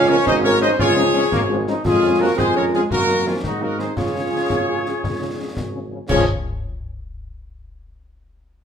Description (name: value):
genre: military-style march for wind band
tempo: 113 BPM (dotted quarters)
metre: 6/8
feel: straight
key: Db major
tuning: A4 = 440 Hz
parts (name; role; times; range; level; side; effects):
- dark trumpet section; melody; 0.0-6.2 s; F4 to Eb5; -24 LUFS; equal; none
- mellow hollow flute section; second line; 0.0-6.3 s; Db4 to C5; -25 LUFS; left 2 dB; none
- mellow woodwind section; second line; 0.0-6.2 s; Db4 to Db5; -26 LUFS; left 4 dB; none
- warm euphonium; second line; 0.0-6.2 s; Db3 to Eb4; -27 LUFS; right 5 dB; none
- clear trombone section; sustained chords; 0.0-6.2 s; F3 to F4; -26 LUFS; right 1 dB; none
- warm tuba; bass; 0.0-6.2 s; Ab1 to Ab2; -22 LUFS; right 1 dB; none
- mellow French horn section; accompaniment; 0.1-6.2 s; Db3 to Db4; -27 LUFS; left 4 dB; none
- concert snare drum, concert bass drum and clash cymbals; drums; 0.3-6.3 s; none; -27 LUFS; left 2 dB; none
room: wet large studio reverb, RT60 1.0 s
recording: minimal, uncompressed stereo recording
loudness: -16 LUFS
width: side -8 dB against mid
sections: 0.0-6.1 A section; 6.1-7.2 B section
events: none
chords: 0.0 Db; 1.9 Db/F; 2.9 Ebm/Gb; 3.4 Ab7; 4.0 Db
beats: 0.27 | 0.80 1.33 | 1.86 2.39 | 2.92 3.44 | 3.98 4.50 | 5.04 5.57 | 6.10